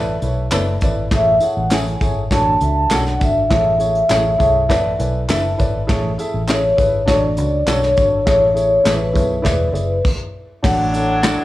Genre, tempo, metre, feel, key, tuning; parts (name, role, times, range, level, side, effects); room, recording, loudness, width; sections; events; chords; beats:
uptempo 1960s-style soul; 101 BPM; 4/4; straight; A major; A4 = 443 Hz
dark upright piano; accompaniment; 0.0-11.4 s; D4 to B5; -22 LUFS; left 1 dB
vintage muted fingered electric bass; bass; 0.0-11.3 s; E1 to C#2; -21 LUFS; equal
soft brush drum kit; drums; 0.2-11.4 s; crash cymbal, hi-hat, kick drum, snare drum; -20 LUFS; equal
tambourine and handclaps; percussion; 0.2-11.4 s; -32 LUFS; right 1 dB
clean electric guitar; stabs; 0.5-11.4 s; B3 to A4; -27 LUFS; right 1 dB; wide subtle chorus, tape echo
vibraphone with soft mallets; melody; 1.1-11.4 s; B4 to A5; -17 LUFS; left 1 dB
clear horn section; second line; 10.6-11.4 s; A2 to D4; -25 LUFS; equal
moderate echo chamber reverb, RT60 2.6 s; studio reverb; -14 LUFS; side -16 dB against mid
0.0-10.6 A section
upright piano fill 4.1-5.9; stop 10.1-10.6
0.0 E7sus4/A; 1.1 Amaj7; 2.3 Dmaj7/A; 3.5 Amaj7; 4.7 E7sus4/A; 5.9 Amaj7; 7.1 Dmaj7/A; 8.3 Amaj7; 9.5 E7; 10.6 D/A
0.53 | 1.12 1.72 2.31 2.91 | 3.51 4.10 4.70 5.29 | 5.89 6.49 7.08 7.68 | 8.27 8.87 9.46 10.05 | 10.65 11.24